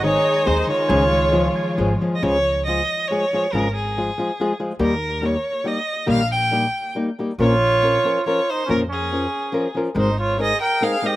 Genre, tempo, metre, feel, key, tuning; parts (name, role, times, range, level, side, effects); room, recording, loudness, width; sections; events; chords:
mexican folk, mariachi; 139 BPM; 3/4; rubato; A4 = 439 Hz
clear violin; melody; 0.0-11.2 s; Ab4 to G5; -21 LUFS; right 1 dB; slapback echo
mellow trumpet; second line; 0.0-1.7, 7.4-11.2 s; Db4 to Bb4; -25 LUFS; right 3 dB; slapback echo
flamenco guitar; accompaniment; 0.0-11.2 s; Bb2 to Bb4; -22 LUFS; left 2 dB
muted symphonic violin section; sustained chords; 0.0-2.2 s; Ab3 to Eb5; -26 LUFS; left 1 dB
concert harp; arpeggios; 0.0-2.6 s; Eb3 to Ab6; -26 LUFS; left 1 dB
upright bass; bass; 0.0-10.5 s; Ab1 to F2; -24 LUFS; equal
little or no reverb; recorded outdoors, with no room sound; -18 LUFS; side -16 dB against mid
0.0-2.2 A section; 2.2-11.2 B section
0.0 Ab; 0.9 Db; 4.8 Eb; 7.4 Bbm; 10.0 Abadd9